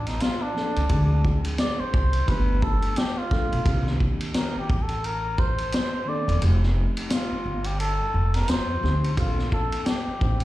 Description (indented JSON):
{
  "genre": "hip hop, jazz-hop",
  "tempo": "87 BPM",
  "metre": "4/4",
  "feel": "swing 60% on 16ths",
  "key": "Bb major",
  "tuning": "A4 = 440 Hz",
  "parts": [
    { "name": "trumpet with cup mute", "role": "melody", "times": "0.0-10.4 s", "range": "D4 to D5", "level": "-29 LUFS", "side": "equal", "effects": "none" },
    { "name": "upright bass", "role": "bass", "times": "0.0-10.4 s", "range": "E1 to F2", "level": "-24 LUFS", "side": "equal", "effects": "none" },
    { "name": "vintage drum kit", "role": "drums", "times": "0.1-10.4 s", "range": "hi-hat, kick drum, ride cymbal, snare drum", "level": "-26 LUFS", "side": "equal", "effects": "none" },
    { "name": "mellow tine electric piano", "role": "accompaniment", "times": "0.5-10.4 s", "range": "Eb3 to C5", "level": "-32 LUFS", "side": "left 2 dB", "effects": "medium stereo tremolo" }
  ],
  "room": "small room ambience",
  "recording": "played on a big sound system in a bare room, stone room reverb",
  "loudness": "-22 LUFS",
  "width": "side -16 dB against mid",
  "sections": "0.0-9.2 A section; 9.2-10.4 B section",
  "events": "muted trumpet solo 0.0-9.2; kick muted 6.4-9.2",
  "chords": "0.0 Bbmaj7; 0.9 Dm7b5; 2.3 G7; 3.7 Cm7; 6.4 F7; 9.2 Bbmaj7",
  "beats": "0.21 | 0.90 1.59 2.28 2.97 | 3.66 4.35 5.04 5.73 | 6.42 7.11 7.79 8.48 | 9.17 9.86"
}